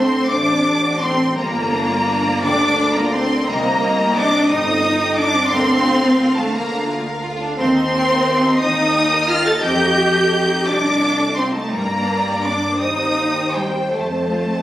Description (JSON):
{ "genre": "classical, slow romantic movement for string orchestra", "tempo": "58 BPM (dotted quarters)", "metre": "6/8", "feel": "rubato", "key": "unclear", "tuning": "A4 = 440 Hz", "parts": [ { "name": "warm symphonic violin section", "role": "melody", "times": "0.0-14.6 s", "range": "G5 to A6", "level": "-20 LUFS", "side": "left 1 dB", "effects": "none" }, { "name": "warm symphonic violin section", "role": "second line", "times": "0.0-14.6 s", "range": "G3 to F5", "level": "-23 LUFS", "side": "equal", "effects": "none" }, { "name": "warm symphonic viola section", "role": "accompaniment", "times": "0.0-14.6 s", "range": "G3 to A4", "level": "-22 LUFS", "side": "equal", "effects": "none" }, { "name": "rich symphonic double bass section", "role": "bass", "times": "0.0-14.6 s", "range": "G1 to G2", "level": "-25 LUFS", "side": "equal", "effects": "none" }, { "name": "warm symphonic cello section", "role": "bass", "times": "0.0-14.6 s", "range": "G3 to A4", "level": "-21 LUFS", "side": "equal", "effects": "none" } ], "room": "wet stone room reverb, RT60 1.0 s", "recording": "recorded on a phone in the room, club reverb", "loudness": "-15 LUFS", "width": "side -14 dB against mid", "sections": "0.0-14.6 A section", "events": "none", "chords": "0.0 D7(no3); 1.4 Gm; 3.5 Cm; 5.5 Bb/D; 7.6 Cm/Eb; 9.6 F7; 11.7 Gm; 12.8 Cm/Eb; 13.9 F" }